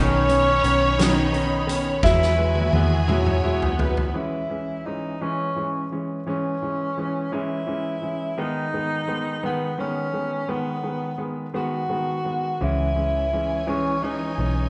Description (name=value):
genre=six-eight pop ballad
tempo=57 BPM (dotted quarters)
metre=6/8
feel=straight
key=unclear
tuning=A4 = 440 Hz
part: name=mellow tenor saxophone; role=melody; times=0.0-14.7 s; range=B3 to F#4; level=-28 LUFS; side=equal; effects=none
part: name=warm studio violin section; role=second line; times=0.0-4.1 s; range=G#4 to C#5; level=-30 LUFS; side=equal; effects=none
part: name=clear grand piano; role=accompaniment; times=0.0-14.6 s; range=D#3 to E4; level=-29 LUFS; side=equal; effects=none
part: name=warm studio string section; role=sustained chords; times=0.0-4.1, 12.6-14.7 s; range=E3 to B5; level=-34 LUFS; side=equal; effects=none
part: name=vintage muted fingered electric bass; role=bass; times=0.0-4.1, 12.6-14.7 s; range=B1 to E2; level=-27 LUFS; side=equal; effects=none
part: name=loose indie drum kit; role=drums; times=0.3-4.1 s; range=hi-hat, kick drum, snare drum, toms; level=-27 LUFS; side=equal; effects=none
room=moderate scoring stage reverb, RT60 1.9 s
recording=recorded in a church or concert hall, nothing above 10.7 kHz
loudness=-24 LUFS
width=mono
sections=0.0-4.2 A section; 4.2-14.7 B section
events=drum fill 2.0-4.2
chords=0.0 Badd9; 2.0 Eadd9; 4.2 C#m; 8.4 G#m; 12.6 C#m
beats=0.99 | 2.04 3.09 | 4.15 5.22 | 6.28 7.34 | 8.39 9.44 | 10.50 11.55 | 12.62 13.68